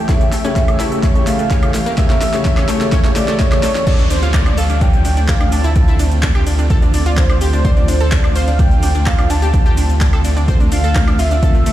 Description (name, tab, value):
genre	progressive house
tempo	127 BPM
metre	4/4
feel	straight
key	D minor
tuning	A4 = 440 Hz
part	warm velvety synth lead	melody	0.0-11.7 s	C5 to A5	-22 LUFS	right 1 dB	chorus, sidechain pumping, dub echo
part	shimmering ambient pad	sustained chords	0.0-11.7 s	D3 to G4	-23 LUFS	equal	chorus, built-in reverb, sidechain pumping
part	analog pluck	arpeggios	0.0-11.7 s	A3 to C5	-23 LUFS	equal	chorus, vintage 12-bit sampler grit, sidechain pumping, ping-pong delay
part	round analog bass	bass	0.0-11.7 s	C#2 to D2	-16 LUFS	equal	sidechain pumping, high-pass filter
part	warm concert grand piano	stabs	0.1-3.6 s	C#3 to E5	-23 LUFS	left 3 dB	sidechain pumping, ping-pong delay
part	deep house drum kit	drums	0.1-11.7 s	cabasa, crash cymbal, handclaps, hi-hat, ride cymbal, snare drum, woodblock	-25 LUFS	equal	high-pass filter on hats, high-pass filter on perc, high-pass filter on snare, high-pass filter on cymbals
part	electronic kick drum	drums	0.1-11.5 s	none	-14 LUFS	equal	none
part	downlifter	sound effects	3.9-7.6 s	none	-28 LUFS	right 2 dB	none
room	light reverb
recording	played on a big sound system in a bare room, stone room reverb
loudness	-12 LUFS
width	side -13 dB against mid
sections	0.0-3.9 A section; 3.9-11.7 B section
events	build-up 0.0-3.9; drum fill 0.0-3.9; filter sweep on soft synth lead 0.0-3.9; drop 3.9-11.7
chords	0.0 A7/C#; 3.9 Dm7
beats	| 0.09 0.56 1.03 1.51 | 1.98 2.45 2.92 3.40 | 3.87 4.34 4.81 5.29 | 5.76 6.23 6.70 7.17 | 7.65 8.12 8.59 9.06 | 9.54 10.01 10.48 10.96 | 11.43